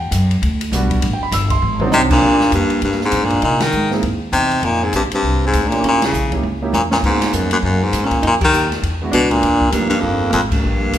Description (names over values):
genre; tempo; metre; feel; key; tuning
jazz, small-group swing and bop; 200 BPM; 4/4; swing 61% on 8ths; Eb major; A4 = 440 Hz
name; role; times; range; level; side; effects
warm grand piano; accompaniment; 0.0-10.2 s; F3 to E6; -23 LUFS; right 3 dB; none
upright bass; bass; 0.0-11.0 s; G1 to C3; -21 LUFS; equal; none
open jazz drum kit; drums; 0.1-11.0 s; crash cymbal, hi-hat, kick drum, ride cymbal, snare drum, toms; -23 LUFS; equal; none
bright baritone saxophone; melody; 1.9-11.0 s; F2 to D#3; -16 LUFS; left 1 dB; none
mellow alto saxophone; second line; 1.9-11.0 s; Bb3 to G#4; -22 LUFS; right 2 dB; none
room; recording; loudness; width
moderate recital hall reverb, RT60 1.5 s; recorded in a church or concert hall; -14 LUFS; side -11 dB against mid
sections
0.0-2.2 A section; 2.2-11.0 B section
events
drum fill 1.6-1.9, 6.4-7.0; band accent 3.6, 6.0, 8.4, 10.5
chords
0.0 Em9 (rootless); 1.0 G69; 1.6 Ab7#11; 2.2 Ebmaj9; 3.4 Caug; 4.6 Fsus2; 5.8 Eb7b9; 7.0 Abm9; 8.2 Fsus2; 8.8 E9; 9.4 Ebmaj9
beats
0.13 0.43 0.72 | 1.02 1.32 1.62 1.92 | 2.22 2.52 2.82 3.12 | 3.42 3.72 4.02 4.32 | 4.62 4.92 5.22 5.53 | 5.83 6.13 6.43 6.73 | 7.03 7.33 7.63 7.93 | 8.23 8.53 8.83 9.13 | 9.43 9.73 10.03 10.33 | 10.63 10.93